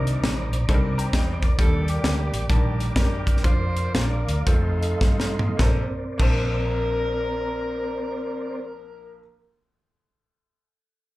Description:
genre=uptempo gospel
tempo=100-133 BPM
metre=4/4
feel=swing 65% on 8ths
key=Bb major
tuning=A4 = 441 Hz
part: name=dark horn section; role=melody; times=0.0-9.2 s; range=Bb3 to C5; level=-30 LUFS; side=left 2 dB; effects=slapback echo
part: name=clear baby grand piano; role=accompaniment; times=0.0-9.2 s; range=Bb1 to Bb5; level=-32 LUFS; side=left 1 dB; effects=slapback echo
part: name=mellow tonewheel organ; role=sustained chords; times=0.0-8.6 s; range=C4 to D6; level=-33 LUFS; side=right 2 dB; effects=slow rotary speaker, chorus vibrato
part: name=vintage muted fingered electric bass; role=bass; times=0.0-9.2 s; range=A1 to G2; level=-25 LUFS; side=equal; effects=none
part: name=crisp fusion drum kit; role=drums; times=0.1-6.4 s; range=crash cymbal, hi-hat, kick drum, snare drum, toms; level=-23 LUFS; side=equal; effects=none
room=light reverb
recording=live gig heard through the venue's PA, club reverb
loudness=-20 LUFS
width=side -18 dB against mid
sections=0.0-5.6 A section; 5.6-10.4 B section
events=slowing down 1.6-5.6; drum fill 5.0-5.6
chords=0.0 Cm9; 1.6 Ebmaj7; 3.4 Bb/F; 4.5 F7; 5.6 Bbmaj9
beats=0.23 0.68 1.13 | 1.58 2.04 2.49 2.96 | 3.44 3.95 4.47 5.02 | 5.60 6.20 6.80 7.40 | 8.00 8.60 9.20

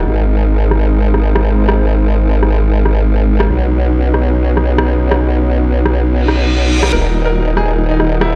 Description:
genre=heavy wobble dubstep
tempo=140 BPM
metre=4/4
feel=swing 54% on 16ths, half-time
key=unclear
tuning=A4 = 440 Hz
part: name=lush unison pad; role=sustained chords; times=0.0-8.4 s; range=Eb3 to Bb4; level=-23 LUFS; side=equal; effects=chorus
part: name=formant-sweep wobble bass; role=bass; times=0.0-8.4 s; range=Eb1 to B1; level=-14 LUFS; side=equal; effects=chorus, overdrive
part: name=dubstep drum kit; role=drums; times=0.0-8.4 s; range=hi-hat, rim click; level=-23 LUFS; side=equal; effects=overdrive, low-pass filter on hats, studio ambience, low-pass filter on snare
part: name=reverse cymbal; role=sound effects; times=6.2-6.9 s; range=none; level=-23 LUFS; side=equal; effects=none
part: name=clear concert grand piano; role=melody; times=6.9-8.4 s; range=Eb4 to Bb4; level=-20 LUFS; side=equal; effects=delay
room=light reverb, digital ambience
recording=played on a big sound system in a bare room, large studio reverb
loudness=-13 LUFS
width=mono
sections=0.0-8.4 A section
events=reverse cymbal 6.2-6.9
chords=0.1 Ab; 3.5 Badd9; 6.9 Ebm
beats=| 0.07 0.50 0.93 1.35 | 1.78 2.21 2.64 3.07 | 3.50 3.93 4.36 4.78 | 5.21 5.64 6.07 6.50 | 6.93 7.36 7.78 8.21

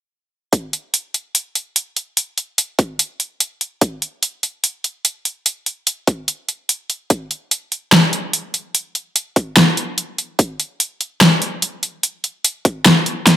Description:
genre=heavy wobble dubstep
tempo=146 BPM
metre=4/4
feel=half-time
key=none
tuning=none
part: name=big-room dance drum kit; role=drums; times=0.5-13.4 s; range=hi-hat, snare drum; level=-14 LUFS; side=equal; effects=overdrive
part: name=electronic kick drum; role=drums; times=0.5-12.7 s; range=none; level=-16 LUFS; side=equal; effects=overdrive, high-pass filter on kick
room=light reverb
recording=none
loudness=-17 LUFS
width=side -11 dB against mid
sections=0.5-13.4 A section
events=none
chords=none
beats=| 0.53 0.94 1.35 1.76 | 2.17 2.58 2.99 3.40 | 3.81 4.23 4.64 5.05 | 5.46 5.87 6.28 6.69 | 7.10 7.51 7.92 8.34 | 8.75 9.16 9.57 9.98 | 10.39 10.80 11.21 11.62 | 12.03 12.45 12.86 13.27

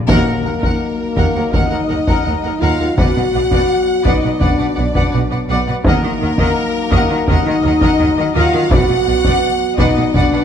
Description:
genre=cinematic, epic orchestral film score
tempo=84 BPM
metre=4/4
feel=straight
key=Eb harmonic minor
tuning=A4 = 440 Hz
part: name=timpani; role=percussion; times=0.0-0.1, 5.8-6.9 s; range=Eb3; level=-26 LUFS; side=left 1 dB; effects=none
part: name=warm symphonic violin section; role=melody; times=0.1-10.4 s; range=Gb5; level=-24 LUFS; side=left 1 dB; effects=none
part: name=clear studio violin section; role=second line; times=0.1-10.4 s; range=Bb4 to F#5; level=-24 LUFS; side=left 4 dB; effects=none
part: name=rich symphonic viola section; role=accompaniment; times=0.1-10.4 s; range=Bb4 to Eb5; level=-24 LUFS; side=left 2 dB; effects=none
part: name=dark French horn section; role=sustained chords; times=0.1-10.4 s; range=Bb3 to F#4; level=-18 LUFS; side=left 2 dB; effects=none
part: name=dark trombone section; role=sustained chords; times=0.1-10.4 s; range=Gb3 to Eb4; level=-26 LUFS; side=right 2 dB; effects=none
part: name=rich symphonic cello section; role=bass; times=0.1-10.4 s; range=Eb2 to Eb3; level=-23 LUFS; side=right 2 dB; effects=none
part: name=rich symphonic double bass section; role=bass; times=0.1-10.2 s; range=B1 to Eb2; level=-21 LUFS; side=right 3 dB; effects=none
part: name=solo taiko drums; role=drums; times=0.1-10.4 s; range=none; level=-18 LUFS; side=equal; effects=none
room=moderate recital hall reverb, RT60 1.7 s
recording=dark, warm production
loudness=-13 LUFS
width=side -8 dB against mid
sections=0.1-10.4 A section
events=band accent 0.1-0.8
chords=0.1 Ebm; 3.0 Bm; 5.8 Ebm; 8.7 Bm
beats=| 0.08 0.80 1.54 2.26 | 2.98 3.69 4.41 5.13 | 5.84 6.56 7.29 8.00 | 8.72 9.43 10.15

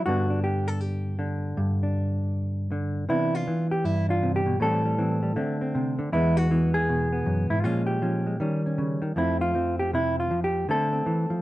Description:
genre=solo jazz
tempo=158 BPM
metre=4/4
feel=swing 63% on 8ths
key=G major, C major from 3.1 s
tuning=A4 = 439 Hz
part: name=hollow-body jazz guitar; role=solo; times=0.0-11.4 s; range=E2 to A4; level=-23 LUFS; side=equal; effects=none
room=moderate club reverb, RT60 0.7 s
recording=none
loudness=-23 LUFS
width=side -16 dB against mid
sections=0.0-3.1 A section; 3.1-11.4 B section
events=none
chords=0.0 Gmaj7; 3.1 Cmaj9; 4.6 Am7; 5.3 D5; 6.1 Eadd9; 7.6 Bbm7; 8.4 Eb7; 9.2 F; 10.7 Dm9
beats=| 0.05 0.43 0.80 1.18 | 1.56 1.94 2.32 2.69 | 3.07 3.45 3.83 4.21 | 4.59 4.97 5.35 5.73 | 6.11 6.49 6.87 7.25 | 7.63 8.01 8.39 8.77 | 9.15 9.53 9.91 10.29 | 10.67 11.05

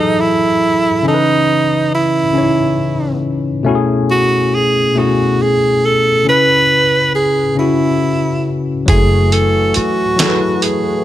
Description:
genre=slow six-eight R&B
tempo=46 BPM (dotted quarters)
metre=6/8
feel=straight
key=F# dorian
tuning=A4 = 439 Hz
part: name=warm tenor saxophone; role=melody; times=0.0-11.0 s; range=D#4 to B4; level=-14 LUFS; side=right 2 dB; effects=none
part: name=tine electric piano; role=accompaniment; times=0.0-11.0 s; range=B2 to G#5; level=-16 LUFS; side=left 3 dB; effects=none
part: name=tonewheel organ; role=sustained chords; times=8.9-11.0 s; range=E3 to F#4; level=-23 LUFS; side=right 3 dB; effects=overdrive, chorus vibrato, slow rotary speaker
part: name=vintage muted fingered electric bass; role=bass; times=8.9-9.8 s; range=F#1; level=-14 LUFS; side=equal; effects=none
part: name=dusty soul sampler-style drum kit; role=drums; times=8.9-10.8 s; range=hi-hat, kick drum, snare drum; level=-14 LUFS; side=right 1 dB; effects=none
room=light reverb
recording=none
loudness=-11 LUFS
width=side -13 dB against mid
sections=0.0-11.0 A section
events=none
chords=0.0 F#m9; 1.1 C#m7; 3.7 B13sus4; 6.3 C#m7; 8.9 F#m9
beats=| 1.06 2.36 | 3.67 4.97 | 6.27 7.58 | 8.88 10.19

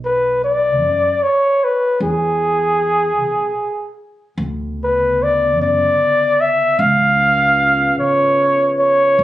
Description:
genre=acoustic folk-pop ballad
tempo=50 BPM (dotted quarters)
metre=6/8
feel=straight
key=unclear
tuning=A4 = 442 Hz
part: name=upright bass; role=bass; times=0.0-9.2 s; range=F#1 to F#2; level=-24 LUFS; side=right 1 dB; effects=none
part: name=mellow flugelhorn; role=melody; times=0.1-9.2 s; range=G#4 to E#5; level=-14 LUFS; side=equal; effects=none
part: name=dark analog pad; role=sustained chords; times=4.4-9.2 s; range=C#3 to B4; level=-24 LUFS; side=equal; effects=chorus
room=light reverb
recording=recorded on a phone in the room, club reverb, nothing above 10.7 kHz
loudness=-13 LUFS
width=side -14 dB against mid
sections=0.0-9.2 A section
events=none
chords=0.0 Bm; 2.0 E; 4.4 Bmadd9; 6.8 C#7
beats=0.82 | 2.02 3.20 | 4.39 5.58 | 6.77 7.97 | 9.17

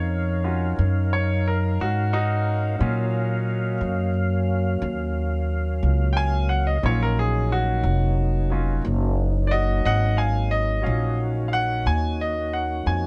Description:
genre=blues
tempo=60 BPM (dotted quarters)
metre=12/8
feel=straight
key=Eb minor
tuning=A4 = 440 Hz
part: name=bright grand piano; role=accompaniment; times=0.0-13.1 s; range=Gb3 to Ab5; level=-29 LUFS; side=equal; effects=none
part: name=mellow tonewheel organ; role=sustained chords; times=0.0-13.1 s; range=Gb3 to F5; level=-31 LUFS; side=equal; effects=slow rotary speaker, overdrive, chorus vibrato
part: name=upright bass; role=bass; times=0.0-13.1 s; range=F1 to Bb2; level=-25 LUFS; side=equal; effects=none
room=little or no reverb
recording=dark, warm production, nothing above 11.0 kHz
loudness=-23 LUFS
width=mono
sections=0.0-13.1 A section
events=grand piano solo 0.0-13.1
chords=0.0 Ebm9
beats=0.79 1.80 | 2.80 3.81 4.82 5.82 | 6.83 7.83 8.84 9.85 | 10.85 11.86 12.87

